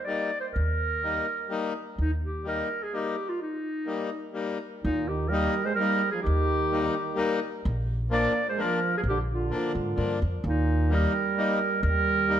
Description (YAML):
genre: alpine folk, alpine dance band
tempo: 128 BPM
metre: 3/4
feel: straight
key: Eb major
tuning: A4 = 440 Hz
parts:
  - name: warm clarinet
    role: melody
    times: 0.0-12.4 s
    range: Eb4 to D5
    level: -28 LUFS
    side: right 1 dB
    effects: none
  - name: accordion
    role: accompaniment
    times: 0.1-12.4 s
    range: F3 to Eb4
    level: -31 LUFS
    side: left 4 dB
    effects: none
  - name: upright bass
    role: bass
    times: 0.6-2.6, 4.8-12.4 s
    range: Bb1 to Ab2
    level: -27 LUFS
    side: equal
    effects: none
  - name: warm euphonium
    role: second line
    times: 4.8-12.4 s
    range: Bb2 to Bb3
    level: -31 LUFS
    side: right 4 dB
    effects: none
room: moderate recital hall reverb, RT60 1.6 s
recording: none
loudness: -25 LUFS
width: side -10 dB against mid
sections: 0.0-4.8 A section; 4.8-12.4 A section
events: break 3.4-4.8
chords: 0.0 Eb; 7.6 Bb; 10.4 Eb